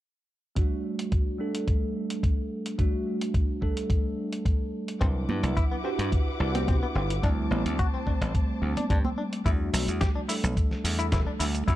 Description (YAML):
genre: nu-disco, nu disco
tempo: 108 BPM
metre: 4/4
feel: straight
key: unclear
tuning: A4 = 440 Hz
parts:
  - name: bell-like tine electric piano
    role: accompaniment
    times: 0.6-11.8 s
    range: F#3 to B4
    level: -32 LUFS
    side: right 1 dB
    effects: phaser, sidechain pumping, low-pass filter, digital delay
  - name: dusty soul sampler-style drum kit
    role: drums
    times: 0.6-11.8 s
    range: hi-hat, shaker, snare drum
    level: -35 LUFS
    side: right 1 dB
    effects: none
  - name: electronic kick drum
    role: drums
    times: 0.6-11.8 s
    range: none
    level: -25 LUFS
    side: equal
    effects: none
  - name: muted studio string section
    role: sustained chords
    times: 5.0-9.4 s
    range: G3 to D6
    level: -36 LUFS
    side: left 1 dB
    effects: sidechain pumping
  - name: direct-recorded clean electric guitar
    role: riff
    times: 5.0-11.7 s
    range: B3 to G4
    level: -35 LUFS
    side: left 4 dB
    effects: lush chorus, digital delay
  - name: dry thumbed slap bass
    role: bass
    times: 5.0-11.8 s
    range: E1 to C3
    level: -28 LUFS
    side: equal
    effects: none
  - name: congas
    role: percussion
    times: 5.3-9.2 s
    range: none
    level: -35 LUFS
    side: right 4 dB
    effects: none
room: little or no reverb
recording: dark, warm production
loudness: -25 LUFS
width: side -14 dB against mid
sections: 0.6-9.5 A section; 9.5-11.8 B section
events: filter sweep on tine electric piano 0.6-9.5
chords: 0.6 Dadd11/G; 5.0 Cmaj9#11; 7.2 D7sus4; 9.5 Em11